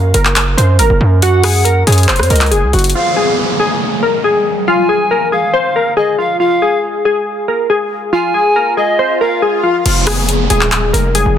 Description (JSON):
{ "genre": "hip hop, trap", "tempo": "139 BPM", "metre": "4/4", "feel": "half-time", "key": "F phrygian", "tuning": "A4 = 440 Hz", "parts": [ { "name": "glassy digital keys", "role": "melody", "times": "0.0-11.4 s", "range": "F4 to C5", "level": "-14 LUFS", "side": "left 1 dB", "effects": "chorus, low-pass filter, tape echo" }, { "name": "distorted 808-style bass", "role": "bass", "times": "0.0-2.9, 9.9-11.4 s", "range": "Eb1 to Gb2", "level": "-12 LUFS", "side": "equal", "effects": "distortion" }, { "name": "trap drum kit", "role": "drums", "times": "0.1-2.9, 9.9-11.2 s", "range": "crash cymbal, handclaps, hi-hat, rim click", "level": "-16 LUFS", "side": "left 1 dB", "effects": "none" }, { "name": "polished pan flute", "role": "second line", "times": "1.2-9.4 s", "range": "Db5 to Ab5", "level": "-18 LUFS", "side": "equal", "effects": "tape echo" }, { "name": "downlifter and swell", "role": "sound effects", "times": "2.9-11.4 s", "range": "none", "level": "-20 LUFS", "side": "right 1 dB", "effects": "none" } ], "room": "light reverb", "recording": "dense, heavily limited modern master", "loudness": "-10 LUFS", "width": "side -9 dB against mid", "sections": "0.0-3.0 A section; 3.0-9.9 B section; 9.9-11.4 C section", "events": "swell 7.5-9.9", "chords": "0.0 Gb; 3.0 N.C.; 9.9 Fm", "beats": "0.36 0.79 | 1.22 1.66 2.09 2.52 | 2.95 3.38 3.81 4.25 | 4.68 5.11 5.54 5.97 | 6.40 6.83 7.27 7.70 | 8.13 8.56 8.99 9.43 | 9.86 10.29 10.72 11.15" }